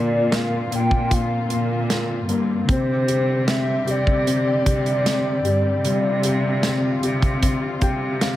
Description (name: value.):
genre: pop ballad.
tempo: 76 BPM.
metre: 4/4.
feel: straight.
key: unclear.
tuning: A4 = 441 Hz.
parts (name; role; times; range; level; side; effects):
hollow clarinet-like synth lead; melody; 0.0-8.2 s; C5 to G5; -24 LUFS; equal; chorus, tape echo.
dark grand piano; accompaniment; 0.0-8.4 s; G3 to G5; -26 LUFS; left 4 dB; none.
muted studio string section; sustained chords; 0.0-8.4 s; D3 to G4; -29 LUFS; left 1 dB; none.
muted studio cello section; bass; 0.0-8.4 s; G2 to C3; -23 LUFS; equal; none.
modern studio drum kit; drums; 0.3-8.4 s; hi-hat, kick drum, snare drum; -23 LUFS; right 1 dB; none.
room: studio reverb.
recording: none.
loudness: -18 LUFS.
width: side -14 dB against mid.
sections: 0.0-8.4 A section.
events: grand piano fill 7.4-8.4.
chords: 0.0 Bbadd9; 2.7 Csus2.